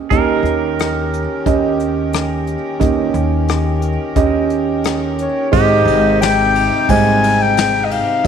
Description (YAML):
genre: acoustic folk-pop ballad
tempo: 88 BPM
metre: 4/4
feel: straight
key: unclear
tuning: A4 = 441 Hz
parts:
  - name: felt-muted upright piano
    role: accompaniment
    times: 0.0-8.3 s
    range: Ab1 to Eb5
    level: -18 LUFS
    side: right 8 dB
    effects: none
  - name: pedal steel guitar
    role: second line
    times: 0.1-8.3 s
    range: G4 to Bb4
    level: -24 LUFS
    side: right 10 dB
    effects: none
  - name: hand-pumped harmonium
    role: sustained chords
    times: 0.1-8.3 s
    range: C3 to G4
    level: -23 LUFS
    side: left 1 dB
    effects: none
  - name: upright bass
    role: bass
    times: 0.1-8.3 s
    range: Ab1 to Eb2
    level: -20 LUFS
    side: left 1 dB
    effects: none
  - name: soft brush drum kit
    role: drums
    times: 0.1-8.3 s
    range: hi-hat, kick drum, ride cymbal, rim click, snare drum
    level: -21 LUFS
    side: left 4 dB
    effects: none
  - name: warm clarinet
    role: melody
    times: 5.2-8.3 s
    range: Db5 to Ab5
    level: -15 LUFS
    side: left 5 dB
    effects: none
room: moderate plate reverb, RT60 2.0 s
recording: 1960s-style stereo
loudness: -13 LUFS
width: side -7 dB against mid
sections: 0.1-5.5 A section; 5.5-8.3 B section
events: none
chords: 0.1 Eb7; 5.5 Abmaj7